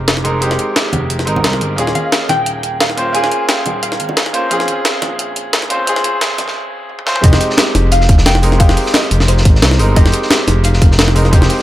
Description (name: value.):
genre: liquid drum and bass.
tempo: 176 BPM.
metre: 4/4.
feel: swing 54% on 16ths.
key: F minor.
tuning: A4 = 439 Hz.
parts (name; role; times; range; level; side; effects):
soft round pluck; melody; 0.0-11.1 s; C5 to Ab5; -21 LUFS; equal; lush chorus, analog delay.
bright grand piano; accompaniment; 0.0-11.6 s; Ab3 to C5; -18 LUFS; equal; analog delay.
smooth gliding synth bass; bass; 0.0-11.5 s; Eb1 to C2; -15 LUFS; equal; none.
breakbeat sampler-style drum kit; drums; 0.1-11.6 s; hi-hat, snare drum, toms; -16 LUFS; equal; high-pass filter on hats, high-pass filter on snare, high-pass filter on toms, high-pass filter on room.
congas; percussion; 0.9-6.5 s; none; -26 LUFS; right 2 dB; tape echo.
crunchy breakbeat drum kit; drums; 7.2-11.6 s; hi-hat, snare drum; -21 LUFS; equal; high-pass filter on hats, high-pass filter on snare, high-pass filter on room, tape echo.
electronic kick drum; drums; 7.2-11.4 s; none; -9 LUFS; equal; overdrive.
room: moderate spring reverb, RT60 2.5 s.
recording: echo-heavy mix, high-pass filter.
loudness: -11 LUFS.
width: side -14 dB against mid.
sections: 0.0-7.2 A section; 7.2-11.6 B section.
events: build-up 0.0-7.2; break 6.6-7.2; drum fill 7.0; drop 7.2-11.6.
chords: 0.0 Fm7; 1.8 Eb9sus4; 4.5 Bbm7; 7.2 Fm7.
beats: 0.08 | 0.42 0.76 1.10 1.44 | 1.78 2.12 2.46 2.81 | 3.15 3.49 3.83 4.17 | 4.51 4.85 5.19 5.53 | 5.87 6.21 6.55 6.90 | 7.24 7.58 7.92 8.26 | 8.60 8.94 9.28 9.62 | 9.96 10.30 10.65 10.99 | 11.33.